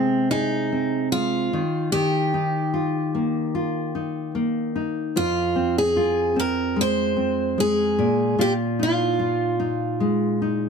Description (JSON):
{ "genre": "pop", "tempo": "74 BPM", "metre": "4/4", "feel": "straight", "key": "unclear", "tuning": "A4 = 440 Hz", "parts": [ { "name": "picked steel-string acoustic guitar", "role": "melody", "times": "0.0-10.4 s", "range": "C4 to C5", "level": "-23 LUFS", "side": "right 1 dB", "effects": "none" }, { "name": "nylon-string guitar", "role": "accompaniment", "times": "0.0-10.7 s", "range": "F2 to Ab4", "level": "-23 LUFS", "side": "left 1 dB", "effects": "none" } ], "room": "light reverb", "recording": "none", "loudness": "-20 LUFS", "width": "side -6 dB against mid", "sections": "0.0-5.2 A section; 5.2-10.7 B section", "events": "none", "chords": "0.0 Ab/C; 1.5 Ebadd9; 5.2 Fm; 8.0 Bb7sus4" }